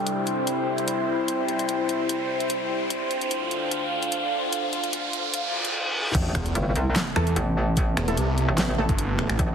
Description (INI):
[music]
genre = heavy wobble dubstep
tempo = 148 BPM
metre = 4/4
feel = swing 53% on 16ths, half-time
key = A minor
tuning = A4 = 440 Hz
[part]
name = lush unison pad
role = sustained chords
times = 0.0-9.5 s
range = D2 to C5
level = -29 LUFS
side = equal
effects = chorus, sidechain pumping
[part]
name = riser, reverse cymbal and sub drop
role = sound effects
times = 0.0-7.8 s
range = none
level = -30 LUFS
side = equal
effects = none
[part]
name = warbly tape-like pad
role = texture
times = 0.0-9.5 s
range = D4 to A5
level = -30 LUFS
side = left 1 dB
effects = chorus, built-in reverb, sidechain pumping
[part]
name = dubstep drum kit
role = drums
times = 0.1-9.5 s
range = crash cymbal, finger snaps, handclaps, hi-hat, snare drum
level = -29 LUFS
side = equal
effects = overdrive, high-pass filter on hats, high-pass filter on cymbals, high-pass filter on snare
[part]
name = metallic wobble bass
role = bass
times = 6.1-9.5 s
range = G1 to C2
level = -24 LUFS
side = equal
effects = chorus, overdrive
[part]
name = electronic kick drum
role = drums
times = 6.1-9.5 s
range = none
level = -24 LUFS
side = equal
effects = overdrive
[part]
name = snarling distorted saw bass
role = bass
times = 6.3-9.4 s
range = E1 to E2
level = -25 LUFS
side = equal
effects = distortion, overdrive
[part]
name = orchestra-hit-like synth stab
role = stabs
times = 7.2-8.9 s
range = A3 to A4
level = -31 LUFS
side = right 1 dB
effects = built-in reverb, ping-pong delay
[sound]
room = moderate lush hall reverb, RT60 2.3 s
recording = heavily compressed radio sound, high-pass filter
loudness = -22 LUFS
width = side -7 dB against mid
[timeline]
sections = 0.0-6.1 A section; 6.1-9.5 B section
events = build-up 0.0-6.1; riser 0.0-5.7; filter sweep 0.0-6.1; reverse cymbal 5.3-6.1; drop 6.1-9.5; impact 6.1-7.8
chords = 0.0 C; 2.9 Dm7; 6.1 Amadd9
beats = 0.07 0.47 0.88 | 1.28 1.69 2.09 2.50 | 2.90 3.31 3.71 4.12 | 4.53 4.93 5.34 5.74 | 6.15 6.55 6.96 7.36 | 7.77 8.17 8.58 8.98 | 9.39